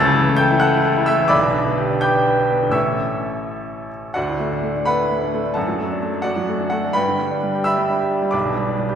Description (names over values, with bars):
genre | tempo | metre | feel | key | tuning
classical, virtuoso piano study | 86 BPM (dotted quarters) | 6/8 | uneven beats, rubato | D major | A4 = 439 Hz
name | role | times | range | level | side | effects
clear baby grand piano | solo | 0.0-9.0 s | A1 to A6 | -17 LUFS | equal | none
room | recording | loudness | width
wet scoring stage reverb, RT60 1.9 s | recorded in a church or concert hall | -17 LUFS | side -8 dB against mid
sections
0.0-4.2 A section; 4.2-9.0 B section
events
none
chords
0.0 A/C#; 1.3 G/B; 2.8 A; 4.2 D; 5.6 D/F#; 7.0 G; 8.3 G/B